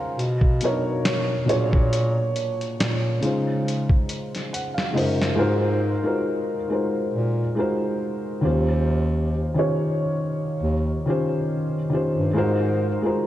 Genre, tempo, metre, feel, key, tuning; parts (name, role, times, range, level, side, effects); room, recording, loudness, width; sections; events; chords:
lo-fi hip hop; 69 BPM; 4/4; swing 56% on 16ths; A4 = 440 Hz
felt-muted upright piano; accompaniment; 0.0-13.3 s; Bb2 to C6; -23 LUFS; equal; cassette tape, low-pass filter
mellow bass clarinet; bass; 0.2-13.0 s; Eb2 to Db3; -24 LUFS; equal
dusty soul sampler-style drum kit; drums; 0.2-5.4 s; hi-hat, kick drum, snare drum; -24 LUFS; equal
moderate lush hall reverb, RT60 2.7 s; dreamy mix soaked in reverb, cassette tape; -20 LUFS; side -13 dB against mid
0.0-5.4 A section; 5.4-13.3 B section
drum fill 4.5-5.4
0.2 Cbmaj9; 1.5 Bb7alt; 3.2 Dbmaj7; 5.4 Ab13; 8.4 Eb13; 12.4 Ab13